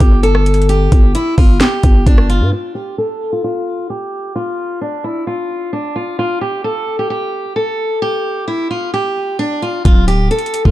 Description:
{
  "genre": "hip hop, trap",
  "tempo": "131 BPM",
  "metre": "4/4",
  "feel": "half-time",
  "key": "D minor",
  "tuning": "A4 = 441 Hz",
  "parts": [
    { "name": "fingerpicked steel-string acoustic guitar", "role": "melody", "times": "0.0-10.7 s", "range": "D4 to A4", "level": "-17 LUFS", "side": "equal", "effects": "low-pass filter, tape echo" },
    { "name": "growling 808-style bass", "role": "bass", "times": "0.0-2.5, 9.9-10.7 s", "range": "D1 to G2", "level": "-13 LUFS", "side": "equal", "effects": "none" },
    { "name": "trap drum kit", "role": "drums", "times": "0.0-2.4, 9.9-10.7 s", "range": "hi-hat, kick drum, rim click, snare drum", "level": "-10 LUFS", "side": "equal", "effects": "none" }
  ],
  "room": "little or no reverb",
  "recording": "dark, warm production",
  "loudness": "-13 LUFS",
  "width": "side -15 dB against mid",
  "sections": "0.0-2.5 A section; 2.5-9.9 B section",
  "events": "filter sweep on steel-string acoustic guitar 2.5-9.9",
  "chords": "0.0 N.C.; 9.9 Dm",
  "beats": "0.23 | 0.69 1.15 1.61 2.07 | 2.52 2.98 3.44 3.90 | 4.36 4.81 5.27 5.73 | 6.19 6.65 7.10 7.56 | 8.02 8.48 8.94 9.39 | 9.85 10.31"
}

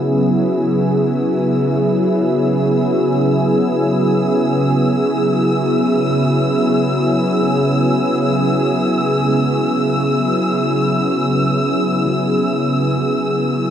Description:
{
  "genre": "ambient",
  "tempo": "free time",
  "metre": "none",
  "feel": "none",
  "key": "unclear",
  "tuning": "A4 = 440 Hz",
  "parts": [
    { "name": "warm analog pad", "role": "sustained chords", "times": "0.0-13.7 s", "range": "C#3 to G#4", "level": "-14 LUFS", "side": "equal", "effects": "chorus" },
    { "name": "dark symphonic violin section", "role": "texture", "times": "0.0-13.7 s", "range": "E6", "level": "-25 LUFS", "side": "left 1 dB", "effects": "none" },
    { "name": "soft round pluck", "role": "arpeggios", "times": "0.2-13.7 s", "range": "F#3 to B4", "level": "-33 LUFS", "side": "left 2 dB", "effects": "none" }
  ],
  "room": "wet lush hall reverb, RT60 3.1 s",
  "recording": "dreamy mix soaked in reverb, cassette tape",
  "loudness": "-14 LUFS",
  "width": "side -9 dB against mid",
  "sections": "0.0-13.7 A section",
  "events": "fade-in on violin section 0.0-13.7",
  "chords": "0.0 C#m",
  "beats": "free time"
}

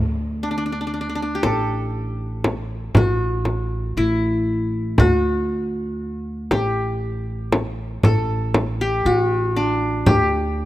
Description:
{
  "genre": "Arabic maqam ensemble",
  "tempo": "118 BPM (eighths)",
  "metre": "10/8",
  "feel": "straight",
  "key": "D maqam rast",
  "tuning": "A4 = 443 Hz",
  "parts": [
    { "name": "upright bass", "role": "bass", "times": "0.0-10.7 s", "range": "A1 to D2", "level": "-24 LUFS", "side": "right 1 dB", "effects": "none" },
    { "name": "qanun", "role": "melody", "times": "0.4-10.7 s", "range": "D4 to A4", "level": "-22 LUFS", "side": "left 1 dB", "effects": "none" },
    { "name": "frame drum", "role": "percussion", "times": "1.4-10.3 s", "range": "none", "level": "-18 LUFS", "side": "equal", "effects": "none" }
  ],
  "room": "light reverb, studio reverb",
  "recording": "rough home demo mix",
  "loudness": "-19 LUFS",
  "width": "side -15 dB against mid",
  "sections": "0.0-10.7 A section",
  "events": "none",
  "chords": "none",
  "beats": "0.42 0.93 1.44 1.94 2.45 2.96 3.47 3.98 4.49 | 4.99 5.50 6.01 6.52 7.02 7.53 8.04 8.55 9.05 9.56 | 10.07 10.58"
}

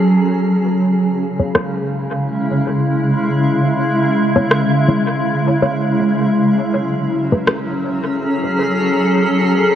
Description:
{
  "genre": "ambient dub",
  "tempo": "free time",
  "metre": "none",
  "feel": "none",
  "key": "C# minor",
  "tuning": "A4 = 441 Hz",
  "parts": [
    { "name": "granular cloud pad", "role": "sustained chords", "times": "0.0-9.8 s", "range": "C#3 to A4", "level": "-14 LUFS", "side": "equal", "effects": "built-in reverb" },
    { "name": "filtered dub chord stab", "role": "stabs", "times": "1.4-7.7 s", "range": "A3 to C#5", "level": "-22 LUFS", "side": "left 2 dB", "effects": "phaser, dub echo" },
    { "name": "electronic rim click", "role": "drums", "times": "1.6-7.6 s", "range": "none", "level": "-20 LUFS", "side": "equal", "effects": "overdrive, low-pass filter on snare, dub echo" }
  ],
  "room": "wet huge ambient reverb, RT60 6.8 s",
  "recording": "faint mains hum",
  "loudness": "-14 LUFS",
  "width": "side -10 dB against mid",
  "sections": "0.0-9.8 A section",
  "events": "filter sweep on drum 0.0-9.8",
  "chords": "0.1 C#m7; 6.0 F#m9",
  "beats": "free time"
}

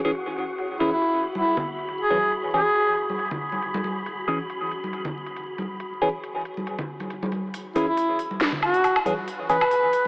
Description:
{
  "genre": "deep dubstep",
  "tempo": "138 BPM",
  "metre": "4/4",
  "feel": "swing 54% on 16ths, half-time",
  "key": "C# minor",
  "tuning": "A4 = 442 Hz",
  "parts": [
    { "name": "barky tine electric piano", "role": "stabs", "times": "0.0-9.6 s", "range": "E3 to G#4", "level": "-28 LUFS", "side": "equal", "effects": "overdrive, phaser, dub echo" },
    { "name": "garage drum kit", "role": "drums", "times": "0.0-10.0 s", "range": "hi-hat, snare drum, woodblock", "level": "-27 LUFS", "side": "equal", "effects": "low-pass filter on hats, low-pass filter on snare, low-pass filter on perc, low-pass filter on room" },
    { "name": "wind-like tuned noise texture", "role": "texture", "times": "0.0-7.6 s", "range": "F#4 to B5", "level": "-33 LUFS", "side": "left 1 dB", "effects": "built-in reverb" },
    { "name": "warm duduk", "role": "melody", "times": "0.8-3.0, 7.8-10.1 s", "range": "E4 to B4", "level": "-23 LUFS", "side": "equal", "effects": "dub echo" },
    { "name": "congas", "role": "percussion", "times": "1.4-10.1 s", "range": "none", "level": "-33 LUFS", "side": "equal", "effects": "none" }
  ],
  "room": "moderate huge ambient reverb, RT60 7.1 s",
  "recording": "vinyl crackle, AM radio sound",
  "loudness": "-22 LUFS",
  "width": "side -26 dB against mid",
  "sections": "0.0-7.5 A section; 7.5-10.1 B section",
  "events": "build-up 7.5-10.1",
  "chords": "0.0 N.C.; 7.5 C#m",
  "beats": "0.15 | 0.58 1.02 1.45 1.89 | 2.32 2.76 3.19 3.63 | 4.06 4.50 4.93 5.37 | 5.80 6.24 6.67 7.11 | 7.54 7.97 8.41 8.84 | 9.28 9.71"
}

